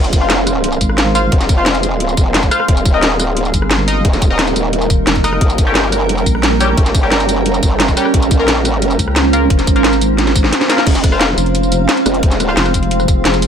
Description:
dark technical drum and bass; 176 BPM; 4/4; straight; F minor; A4 = 437 Hz
deep dark ambient pad; sustained chords; 0.0-13.5 s; G3 to C5; -21 LUFS; right 1 dB; chorus, built-in reverb, sidechain pumping
growl bass; bass; 0.0-12.6 s; Eb1 to Bb1; -17 LUFS; equal; chorus
drum and bass drum kit; drums; 0.0-13.5 s; crash cymbal, hi-hat, rim click, snare drum, tambourine; -17 LUFS; equal
granular cloud pad; texture; 0.1-13.5 s; C4 to C6; -20 LUFS; right 3 dB; built-in reverb, sidechain pumping
electronic kick drum; drums; 0.1-13.2 s; -14 LUFS; equal
band-passed chord stab; stabs; 0.2-12.6 s; G3 to F5; -19 LUFS; left 3 dB; chorus, phaser, ping-pong delay
vowel-sweep wobble bass; bass; 0.8-1.3, 3.5-6.8, 9.0-13.5 s; Eb1 to Db2; -16 LUFS; equal; chorus
light reverb; -11 LUFS; side -8 dB against mid
0.0-10.9 A section; 10.9-13.5 A section
drop 0.0-10.9, 10.9-13.5; drum fill 10.2-10.9
0.0 Fm; 2.7 Eb; 5.4 Gdim; 8.1 Bbmadd9; 10.9 Fm

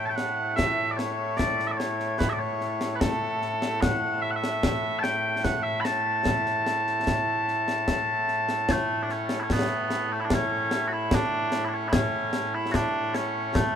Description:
scottish traditional, Scottish pipe music; 74 BPM; 3/4; straight; A major; A4 = 439 Hz
mellow small bagpipes; melody; 0.0-13.8 s; A2 to B5; -25 LUFS; equal
concert snare drum and concert bass drum; drums; 0.2-13.7 s; -29 LUFS; left 1 dB
light reverb; minimal, uncompressed stereo recording; -24 LUFS; side -8 dB against mid
0.0-8.7 A section; 8.7-13.8 B section

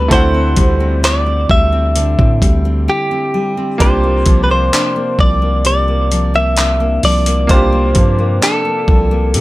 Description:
contemporary R&B; 65 BPM; 4/4; straight; A4 = 442 Hz
direct-recorded clean electric guitar; melody; 0.0-9.4 s; G4 to E5; -16 LUFS; equal; tape echo
bright grand piano; accompaniment; 0.0-9.4 s; A3 to F#5; -22 LUFS; right 2 dB
nylon-string guitar; arpeggios; 0.0-9.4 s; C3 to E4; -20 LUFS; left 2 dB
long sustained 808-style bass; bass; 0.0-9.4 s; C2 to C3; -15 LUFS; equal
dusty soul sampler-style drum kit; drums; 0.1-9.4 s; handclaps, hi-hat, kick drum; -14 LUFS; equal
light reverb; -11 LUFS; side -18 dB against mid
0.0-9.4 A section
break 2.9-3.8
0.0 D9sus4; 3.8 C9sus4

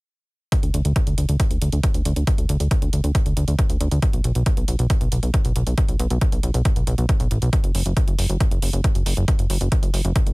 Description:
uplifting trance; 137 BPM; 4/4; straight; A4 = 437 Hz
electronic hi-hat; drums; 0.5-10.3 s; -32 LUFS; right 2 dB; overdrive, sidechain pumping on hats
electronic kick drum; drums; 0.5-10.2 s; -20 LUFS; equal
plucky analog bass; bass; 0.6-10.3 s; F#1 to D2; -21 LUFS; equal; sidechain pumping
little or no reverb; -18 LUFS; side -25 dB against mid
0.5-10.3 A section

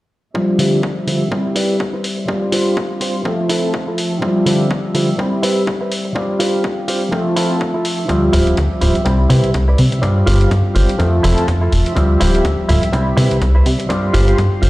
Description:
filtered disco house; 124 BPM; 4/4; swing 57% on 16ths; D minor; A4 = 440 Hz
overdriven clav; accompaniment; 0.3-14.7 s; F3 to E5; -18 LUFS; left 1 dB; phaser, sidechain pumping, low-pass filter
electronic kick drum; drums; 0.3-14.5 s; -24 LUFS; equal; overdrive, high-pass filter on kick, high-pass filter on room
rich chamber string section; sustained chords; 0.4-14.7 s; F3 to C6; -26 LUFS; right 1 dB; vintage 12-bit sampler grit, sidechain pumping, low-pass filter
direct-recorded clean electric guitar; riff; 0.6-14.7 s; D3 to D5; -21 LUFS; right 2 dB; sidechain pumping, low-pass filter
electronic hi-hat; drums; 0.6-14.7 s; -26 LUFS; left 1 dB; sidechain pumping on hats
plucky analog bass; bass; 8.1-14.7 s; D1 to C3; -14 LUFS; equal; sidechain pumping, low-pass filter
light reverb; played on a big sound system in a bare room, stone room reverb; -13 LUFS; side -18 dB against mid
0.4-14.7 A section
filter sweep 0.4-14.7
0.4 Dm11; 1.3 Cmaj7; 2.3 G7sus4; 3.3 Fmaj7; 4.2 Dm11; 5.2 Cmaj7; 6.2 G7sus4; 7.1 Fmaj7; 8.1 Dm11; 9.1 Cmaj7; 10.0 G7sus4; 11.0 Fmaj7; 12.0 Dm11; 12.9 Cmaj7; 13.9 G7sus4

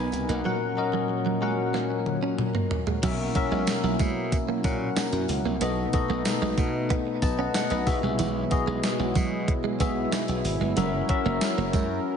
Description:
1980s-style pop; 93 BPM; 4/4; straight; A4 = 440 Hz
bell-like tine electric piano; accompaniment; 0.0-12.2 s; A#2 to B5; -28 LUFS; left 4 dB; analog chorus
warm analog pad; sustained chords; 0.0-12.2 s; A#2 to A#4; -32 LUFS; right 1 dB; chorus
glassy slap bass; bass; 0.0-12.0 s; F#1 to B2; -30 LUFS; right 1 dB
direct-recorded clean electric guitar; riff; 0.1-11.8 s; E3 to C#4; -32 LUFS; right 7 dB; ensemble chorus, diffuse ambient delay
clean 12-bit digital drum machine; drums; 0.1-11.9 s; crash cymbal, hi-hat, kick drum, snare drum, tambourine, toms; -28 LUFS; equal; overdrive
tambourine; percussion; 0.1-11.9 s; -44 LUFS; right 7 dB
moderate plate reverb, RT60 2.1 s; dreamy mix soaked in reverb, nothing above 10.3 kHz; -23 LUFS; side -7 dB against mid
0.0-3.0 A section; 3.0-12.2 B section
drum fill 1.7-3.0; tine electric piano fill 6.9-8.2
0.5 F#/A#; 3.0 F#7/B; 5.6 B7; 7.9 Eadd9/B; 10.8 F#7

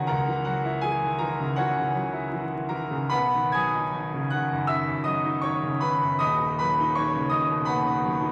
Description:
classical, romantic character piece for solo piano; 68-86 BPM; 4/4; rubato; A4 = 440 Hz
bright concert grand piano; solo; 0.0-8.3 s; D#1 to G#6; -26 LUFS; equal
wet recital hall reverb, RT60 1.6 s; vinyl crackle; -26 LUFS; mono
0.0-8.3 A section
0.1 F#7/C#; 3.1 B; 6.2 B/D#

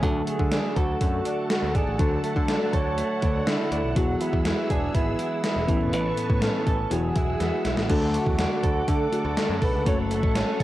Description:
1980s-style pop; 122 BPM; 4/4; straight; A4 = 440 Hz
breathy flugelhorn; melody; 0.0-10.6 s; D4 to C#5; -30 LUFS; right 2 dB; cassette tape
mellow FM electric piano; accompaniment; 0.0-10.6 s; A2 to A4; -31 LUFS; left 3 dB; chorus
string machine, cellos; sustained chords; 0.0-10.6 s; G#4 to E6; -34 LUFS; left 1 dB; ensemble chorus
direct-recorded clean electric guitar; riff; 0.0-10.6 s; E3 to A4; -31 LUFS; right 3 dB; lush chorus
modern bright picked electric bass; bass; 0.0-10.6 s; E1 to D3; -28 LUFS; equal
gated 80s digital drum machine; drums; 0.0-10.6 s; crash cymbal, hi-hat, kick drum, snare drum; -26 LUFS; equal; gated reverb, gated reverb snare, overdrive, cassette tape
light reverb; home recording on cassette; -22 LUFS; side -15 dB against mid
0.0-7.9 A section; 7.9-10.6 B section
drum fill 7.4-7.9
0.0 D; 4.0 Eadd9; 5.7 Aadd9; 6.9 Eadd9; 7.9 D; 9.9 F#m

